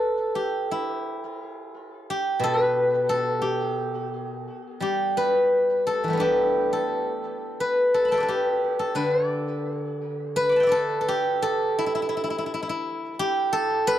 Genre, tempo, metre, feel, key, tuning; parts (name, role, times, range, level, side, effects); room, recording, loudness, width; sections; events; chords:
chinese traditional, Chinese solo plucked strings; 86 BPM; 2/4; rubato; A4 = 440 Hz
steel-string zither; solo; 0.0-14.0 s; B2 to D6; -22 LUFS; equal; tape echo
light reverb; dry, close 1970s-style studio recording; -22 LUFS; side -12 dB against mid
0.0-10.4 A section; 10.4-14.0 B section